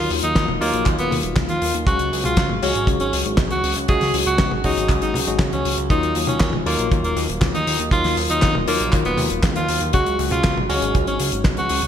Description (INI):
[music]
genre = italo disco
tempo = 119 BPM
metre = 4/4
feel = straight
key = Eb minor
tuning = A4 = 440 Hz
[part]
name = edgy alto saxophone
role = melody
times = 0.0-11.8 s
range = Bb3 to Ab4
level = -22 LUFS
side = equal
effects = ping-pong delay
[part]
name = tine electric piano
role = stabs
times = 0.0-11.9 s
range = Gb3 to Gb4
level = -24 LUFS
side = left 3 dB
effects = overdrive, medium stereo tremolo
[part]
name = fat analog bass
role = bass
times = 0.0-11.9 s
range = Eb1 to Eb2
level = -25 LUFS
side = right 1 dB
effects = none
[part]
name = damped 70s drum kit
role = drums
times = 0.1-11.9 s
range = handclaps, hi-hat, snare drum, toms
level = -24 LUFS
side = left 2 dB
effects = studio reverb, gated reverb
[part]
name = kick drum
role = drums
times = 0.4-11.6 s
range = none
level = -20 LUFS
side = right 1 dB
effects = studio reverb
[sound]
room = moderate lush hall reverb, RT60 2.0 s, small room ambience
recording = bright 1980s-style digital production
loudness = -17 LUFS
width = side -9 dB against mid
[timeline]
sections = 0.0-11.9 A section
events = none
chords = 0.0 Ebmadd9; 1.9 Dbsus4; 5.9 Ebmadd9; 9.9 Dbsus4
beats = 0.36 0.86 1.37 | 1.87 2.37 2.88 3.38 | 3.89 4.39 4.89 5.40 | 5.90 6.41 6.91 7.42 | 7.92 8.43 8.93 9.43 | 9.94 10.44 10.95 11.45